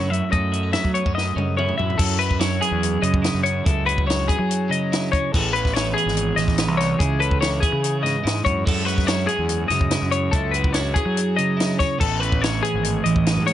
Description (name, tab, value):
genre	math rock and midwest emo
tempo	144 BPM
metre	4/4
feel	straight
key	unclear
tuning	A4 = 441 Hz
part	twelve-string electric guitar	accompaniment	0.0-13.5 s	F#2 to B4	-25 LUFS	right 5 dB	phaser
part	twelve-string electric guitar	arpeggios	0.0-13.5 s	G#4 to E5	-24 LUFS	left 6 dB	tape echo
part	fuzz fingered electric bass	bass	0.0-13.5 s	G#1 to F#3	-24 LUFS	equal	overdrive
part	compact cocktail drum kit	drums	0.1-13.5 s	crash cymbal, hi-hat, kick drum, snare drum, toms	-24 LUFS	equal	none
room	light reverb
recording	nothing above 10.9 kHz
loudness	-18 LUFS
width	side -12 dB against mid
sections	0.0-2.0 A section; 2.0-13.5 B section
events	drum fill 1.2-2.0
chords	0.0 F#m7; 2.0 F#m9; 5.3 Amaj9; 7.0 C#m7; 12.0 Amaj9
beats	| 0.32 0.73 1.15 1.57 | 1.99 2.40 2.82 3.24 | 3.65 4.07 4.49 4.91 | 5.32 5.74 6.16 6.57 | 6.99 7.41 7.83 8.24 | 8.66 9.08 9.49 9.91 | 10.33 10.75 11.16 11.58 | 12.00 12.42 12.83 13.25